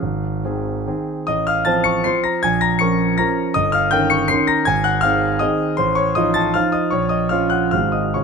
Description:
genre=classical, piano waltz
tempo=138-171 BPM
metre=3/4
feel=rubato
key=unclear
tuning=A4 = 440 Hz
part: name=clear concert grand piano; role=solo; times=0.0-8.2 s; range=G1 to Db7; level=-16 LUFS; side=equal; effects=none
room=little or no reverb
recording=close, detailed microphones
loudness=-16 LUFS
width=side -5 dB against mid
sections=0.0-8.2 A section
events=none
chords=0.0 Ab; 1.3 F7/A; 2.4 Bbm; 3.6 Eb7/G; 4.7 Ab; 5.8 F7/A; 6.9 Bbm; 7.7 Ab7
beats=| 0.01 0.43 0.86 | 1.27 1.67 2.06 | 2.44 2.81 3.19 | 3.56 3.93 4.31 | 4.67 5.04 5.41 | 5.78 6.16 6.55 | 6.93 7.31 7.72 | 8.16

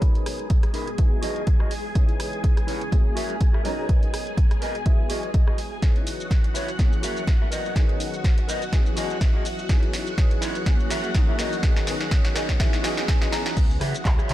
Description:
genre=filtered disco house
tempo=124 BPM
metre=4/4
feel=swing 55% on 16ths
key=C# dorian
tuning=A4 = 440 Hz
part: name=dark grand piano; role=accompaniment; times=0.0-14.3 s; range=D#3 to A#5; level=-32 LUFS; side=equal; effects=phaser, sidechain pumping, low-pass filter
part: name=string machine, full ensemble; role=sustained chords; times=0.0-14.3 s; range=F#4 to G#5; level=-33 LUFS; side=equal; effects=ensemble chorus, vintage 12-bit sampler grit, sidechain pumping, low-pass filter
part: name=mellow electric guitar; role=riff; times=0.0-14.3 s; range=D#4 to A#5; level=-31 LUFS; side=left 1 dB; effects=wide subtle chorus, sidechain pumping, low-pass filter
part: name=fingered electric bass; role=bass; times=0.0-14.3 s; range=E1 to C#3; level=-38 LUFS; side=equal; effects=none
part: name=electronic kick drum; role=drums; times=0.0-14.2 s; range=none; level=-20 LUFS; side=equal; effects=none
part: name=punchy analog drum machine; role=drums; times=0.0-14.3 s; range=crash cymbal, handclaps, hi-hat, rim click, shaker, snare drum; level=-32 LUFS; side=equal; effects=high-pass filter on snare, high-pass filter on hats, high-pass filter on perc, high-pass filter on cymbals, high-pass filter on room
room=little or no reverb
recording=none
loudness=-20 LUFS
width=side -14 dB against mid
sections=0.0-13.6 A section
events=build-up 0.0-13.6; clean electric guitar fill 4.4-5.8, 8.7-9.7, 12.1-13.6; drum fill 5.8-13.6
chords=0.0 Bmaj7; 1.0 Emaj9; 2.0 C#m7; 2.9 F#7; 3.6 Bmaj7; 4.9 Emaj9; 5.8 C#m7; 6.8 F#7; 7.5 Bmaj7; 8.7 Emaj9; 9.7 C#m7; 10.7 F#7; 11.4 Bmaj7; 12.6 Emaj9; 13.6 C#m7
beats=| 0.02 0.51 0.99 1.47 | 1.96 2.44 2.92 3.41 | 3.89 4.38 4.86 5.34 | 5.83 6.31 6.79 7.28 | 7.76 8.25 8.73 9.21 | 9.70 10.18 10.67 11.15 | 11.63 12.12 12.60 13.09 | 13.57 14.05

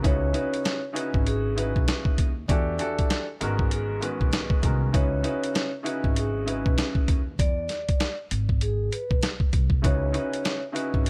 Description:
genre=hip hop, boom-bap hip-hop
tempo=98 BPM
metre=4/4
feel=swing 59% on 16ths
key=C# minor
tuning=A4 = 438 Hz
part: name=warm upright piano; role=accompaniment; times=0.0-11.1 s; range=G#2 to B4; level=-32 LUFS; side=equal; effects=cassette tape, high-pass filter, low-pass filter
part: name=upright bass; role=bass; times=0.0-11.1 s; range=G#1 to E2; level=-31 LUFS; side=equal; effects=none
part: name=dusty soul sampler-style drum kit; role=drums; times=0.0-11.1 s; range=hi-hat, kick drum, snare drum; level=-27 LUFS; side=equal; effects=none
part: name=vibraphone with soft mallets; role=melody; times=0.1-11.1 s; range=G#4 to D5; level=-35 LUFS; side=equal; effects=high-pass filter, low-pass filter, tape echo
room=small room ambience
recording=none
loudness=-25 LUFS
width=mono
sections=0.0-11.1 A section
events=none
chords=0.0 C#m11; 2.5 Em11; 3.4 G#m11; 4.9 C#m11; 7.4 Dsus2/E; 8.3 N.C.; 9.8 C#m11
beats=| 0.04 0.66 1.27 1.88 | 2.49 3.10 3.72 4.33 | 4.94 5.55 6.17 6.78 | 7.39 8.00 8.61 9.23 | 9.84 10.45 11.06

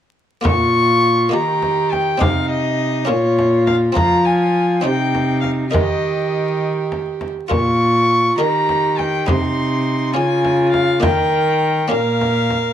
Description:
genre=classical, renaissance-style consort dance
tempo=68 BPM (dotted quarters)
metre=6/8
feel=straight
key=Bb dorian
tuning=A4 = 440 Hz
part: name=buff-stop harpsichord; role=accompaniment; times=0.4-12.7 s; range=Bb2 to Eb5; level=-23 LUFS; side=equal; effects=none
part: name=dark violin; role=melody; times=0.5-12.7 s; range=Db5 to Db6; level=-19 LUFS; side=left 2 dB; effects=none
part: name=warm viola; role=second line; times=0.5-12.7 s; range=Eb4 to Bb4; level=-20 LUFS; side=right 1 dB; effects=none
part: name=rich cello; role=bass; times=0.5-12.7 s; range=Bb2 to F3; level=-21 LUFS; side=right 1 dB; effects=none
part: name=frame drum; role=percussion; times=0.5-12.7 s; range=none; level=-22 LUFS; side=equal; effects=none
room=moderate stone room reverb, RT60 1.0 s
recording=vinyl crackle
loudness=-14 LUFS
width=side -10 dB against mid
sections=0.4-12.7 A section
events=none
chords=0.4 Bbm; 1.3 Eb; 2.2 Cm; 3.1 Bbm; 4.0 Fm; 4.8 Cm; 5.7 Eb; 7.5 Bbm; 8.4 Eb; 9.3 Cm; 10.2 Db; 11.0 Eb; 11.9 Bbm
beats=| 0.45 1.33 | 2.21 3.09 | 3.96 4.84 | 5.73 6.62 | 7.51 8.39 | 9.29 10.16 | 11.04 11.92

